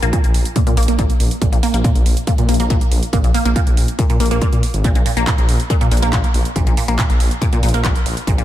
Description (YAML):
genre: driving peak-time techno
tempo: 140 BPM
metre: 4/4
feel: straight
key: unclear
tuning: A4 = 440 Hz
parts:
  - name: resonant blip pluck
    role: riff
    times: 0.0-8.4 s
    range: Bb2 to Bb3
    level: -20 LUFS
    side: equal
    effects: phaser, tube saturation, sidechain pumping, analog delay
  - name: detuned saw bass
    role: bass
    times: 0.0-8.4 s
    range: Ab1 to Bb2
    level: -19 LUFS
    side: equal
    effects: sidechain pumping
  - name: techno drum kit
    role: drums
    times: 0.0-8.4 s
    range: handclaps, hi-hat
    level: -25 LUFS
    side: right 2 dB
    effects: none
  - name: electronic kick drum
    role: drums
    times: 0.1-8.4 s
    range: none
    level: -16 LUFS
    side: equal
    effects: none
room: light reverb, digital ambience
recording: none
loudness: -13 LUFS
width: side -13 dB against mid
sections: 0.0-8.4 A section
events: none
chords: none